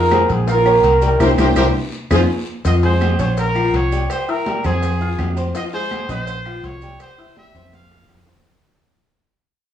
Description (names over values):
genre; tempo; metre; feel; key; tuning
latin, salsa; 166 BPM; 4/4; straight; F harmonic minor; A4 = 440 Hz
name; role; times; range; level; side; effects
mellow trumpet section; melody; 0.0-2.2 s; Db4 to C5; -16 LUFS; right 1 dB; none
bright upright piano; accompaniment; 0.0-8.4 s; F3 to F6; -21 LUFS; left 3 dB; none
fingered electric bass; bass; 0.0-8.4 s; Bb1 to F2; -19 LUFS; equal; none
agogo bells and timbales; percussion; 0.1-8.4 s; none; -29 LUFS; right 3 dB; none
claves; percussion; 0.1-8.3 s; none; -34 LUFS; right 5 dB; none
congas; percussion; 0.1-8.4 s; none; -28 LUFS; right 2 dB; none
cowbell and bongos; percussion; 0.1-8.4 s; none; -31 LUFS; left 2 dB; none
guiro; percussion; 0.1-8.4 s; none; -38 LUFS; left 4 dB; none
maracas; percussion; 0.1-8.4 s; none; -41 LUFS; right 8 dB; none
bright trumpet; melody; 2.7-8.2 s; Ab4 to F5; -25 LUFS; equal; none
room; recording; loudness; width
moderate studio reverb, RT60 0.8 s; worn, warbling old tape, cassette tape, warbly pitch drift, small room reverb; -15 LUFS; side -10 dB against mid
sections
0.0-2.6 A section; 2.6-8.5 B section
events
drum fill 1.2-2.6, 7.7-8.5; band accent 1.2-2.6; fade-out 2.6-8.5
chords
0.5 Bbm; 1.2 C7; 1.9 Fm; 3.4 Bbm; 4.1 C7; 4.8 Fm; 5.5 Fm7; 6.3 Bbm; 7.0 C; 7.7 F5